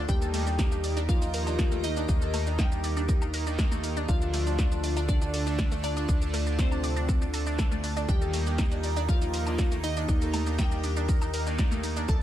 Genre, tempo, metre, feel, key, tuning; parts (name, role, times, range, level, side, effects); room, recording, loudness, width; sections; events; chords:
melodic techno; 120 BPM; 4/4; straight; A4 = 440 Hz
evolving wavetable pad; sustained chords; 0.0-12.2 s; F4 to Bb5; -38 LUFS; equal; phaser, built-in reverb, sidechain pumping
brassy analog pad; stabs; 0.0-12.2 s; D3 to Eb4; -36 LUFS; right 3 dB; chorus, tremolo, cassette tape, sidechain pumping, ping-pong delay
tight sequencer bass; bass; 0.0-12.2 s; D2 to Eb2; -30 LUFS; equal; sidechain pumping
fat analog lead; melody; 0.1-12.2 s; C4 to A4; -35 LUFS; left 2 dB; lush chorus, sidechain pumping, diffuse ambient delay
glassy wavetable pluck; second line; 0.1-12.2 s; C5 to A5; -41 LUFS; left 1 dB; chorus, sidechain pumping, ping-pong delay
analog pluck; arpeggios; 0.1-12.1 s; A3 to D6; -37 LUFS; equal; chorus, phaser, sidechain pumping, ping-pong delay
electronic kick drum; drums; 0.1-12.2 s; -26 LUFS; equal
punchy analog drum machine; drums; 0.1-12.2 s; hi-hat, shaker, snare drum, woodblock; -36 LUFS; equal; sidechain pumping on perc, sidechain pumping on hats
little or no reverb; -25 LUFS; side -12 dB against mid
0.0-12.2 A section
0.1 Eb; 4.1 Dm; 8.1 Eb